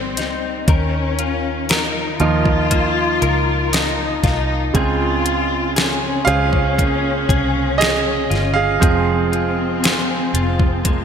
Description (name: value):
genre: pop ballad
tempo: 59 BPM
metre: 4/4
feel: straight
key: unclear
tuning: A4 = 440 Hz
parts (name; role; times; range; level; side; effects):
- dark studio cello section; second line; 0.0-11.0 s; Bb3 to F4; -22 LUFS; left 4 dB; none
- clear concert grand piano; accompaniment; 0.0-11.0 s; Db3 to F5; -20 LUFS; right 6 dB; none
- direct-recorded clean electric guitar; arpeggios; 0.0-11.0 s; Eb3 to C5; -25 LUFS; left 4 dB; ensemble chorus, digital delay
- vintage muted fingered electric bass; bass; 0.0-11.0 s; F1 to Eb2; -22 LUFS; equal; none
- pop drum kit; drums; 0.2-11.0 s; hi-hat, kick drum, snare drum; -19 LUFS; equal; overdrive, gated reverb
room: moderate lush hall reverb, RT60 2.7 s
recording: bright 1980s-style digital production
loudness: -15 LUFS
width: side -7 dB against mid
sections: 0.0-11.0 A section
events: grand piano solo 0.0-11.0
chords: 0.0 Abmaj7 (rootless); 0.7 Ebsus2; 4.7 Bbm7/Db; 8.8 Fm